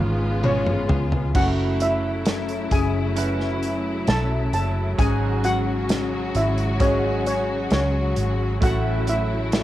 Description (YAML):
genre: pop ballad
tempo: 66 BPM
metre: 4/4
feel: straight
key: F# minor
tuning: A4 = 440 Hz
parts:
  - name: steel pan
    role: melody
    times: 0.0-9.6 s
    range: C#4 to A5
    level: -26 LUFS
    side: equal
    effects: cassette tape
  - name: bright concert grand piano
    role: accompaniment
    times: 0.0-9.6 s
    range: G#2 to B4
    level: -31 LUFS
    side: right 7 dB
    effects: cassette tape
  - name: rich studio string section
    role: sustained chords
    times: 0.0-9.6 s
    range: C#3 to F#4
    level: -28 LUFS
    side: equal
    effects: cassette tape
  - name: picked steel-string acoustic guitar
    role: arpeggios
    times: 0.0-9.6 s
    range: G#2 to C#5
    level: -30 LUFS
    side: left 9 dB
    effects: cassette tape, analog delay
  - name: vintage muted fingered electric bass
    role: bass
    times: 0.0-9.6 s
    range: F#1 to C#2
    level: -25 LUFS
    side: equal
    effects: none
  - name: natural country drum kit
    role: drums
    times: 0.4-9.6 s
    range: crash cymbal, hi-hat, kick drum, snare drum, toms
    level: -24 LUFS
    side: right 1 dB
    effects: cassette tape
room: light reverb, small room ambience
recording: home recording on cassette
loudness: -20 LUFS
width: side -14 dB against mid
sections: 0.0-1.3 A section; 1.3-9.6 B section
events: drum fill 0.0-1.3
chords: 0.0 C#7; 1.3 F#m7; 5.0 C#sus4/G#; 8.6 F#m7/A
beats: 0.44 | 1.35 2.26 3.17 4.07 | 4.98 5.89 6.80 7.71 | 8.62 9.53